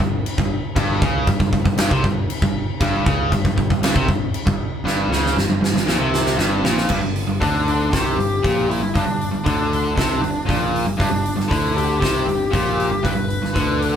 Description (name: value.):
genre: hard rock.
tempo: 117 BPM.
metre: 4/4.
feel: straight.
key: unclear.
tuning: A4 = 440 Hz.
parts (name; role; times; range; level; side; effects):
overdriven electric guitar; riff; 0.0-14.0 s; G2 to D3; -21 LUFS; equal; none.
modern bright picked electric bass; bass; 0.0-14.0 s; G1 to D2; -25 LUFS; equal; none.
huge arena drum kit; drums; 0.0-13.9 s; crash cymbal, hi-hat, kick drum, snare drum; -21 LUFS; equal; none.
bluesy overdriven lead guitar; melody; 7.4-14.0 s; D4 to B4; -24 LUFS; left 2 dB; distortion.
room: moderate studio reverb, RT60 0.6 s.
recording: band playing live in one room.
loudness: -17 LUFS.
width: side -8 dB against mid.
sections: 0.0-6.9 A section; 6.9-14.0 B section.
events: drum fill 4.8-6.9.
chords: 0.0 G(b5, no3); 6.9 G5.